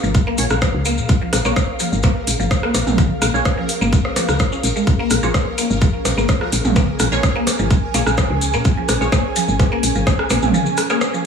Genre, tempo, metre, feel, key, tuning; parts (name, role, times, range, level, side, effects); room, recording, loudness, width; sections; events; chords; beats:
minimal techno; 127 BPM; 4/4; straight; Bb minor; A4 = 440 Hz
mallet-like synth pluck; riff; 0.0-11.2 s; F3 to F4; -23 LUFS; left 1 dB; ensemble chorus, sidechain pumping, digital delay
woody FM bass; bass; 0.0-10.5 s; Ab1 to Bb2; -20 LUFS; left 1 dB; sidechain pumping
maracas; percussion; 0.0-11.2 s; -27 LUFS; left 6 dB
ethereal airy pad; texture; 0.0-11.3 s; Db4 to Ab5; -25 LUFS; right 2 dB; ensemble chorus, built-in reverb, sidechain pumping
pulsing gated texture; texture; 0.0-11.3 s; Bb4; -32 LUFS; left 2 dB; chorus, built-in reverb, sidechain pumping
electronic kick drum; drums; 0.1-10.2 s; -17 LUFS; equal; overdrive
filtered dub chord stab; stabs; 0.4-11.0 s; Bb3 to Db5; -26 LUFS; right 2 dB; phaser, ensemble chorus, digital delay
booming analog drum machine; drums; 0.4-11.1 s; hi-hat, rim click; -25 LUFS; equal
minimal click drum kit; percussion; 0.5-11.1 s; percussion blips, rim click, toms; -22 LUFS; right 2 dB; digital delay
light reverb, digital ambience; studio ambience; -15 LUFS; side -6 dB against mid
0.0-11.3 A section
0.0 Bbm7
0.15 0.62 | 1.09 1.56 2.04 2.51 | 2.98 3.45 3.93 4.40 | 4.87 5.34 5.82 6.29 | 6.76 7.23 7.71 8.18 | 8.65 9.12 9.60 10.07 | 10.54 11.01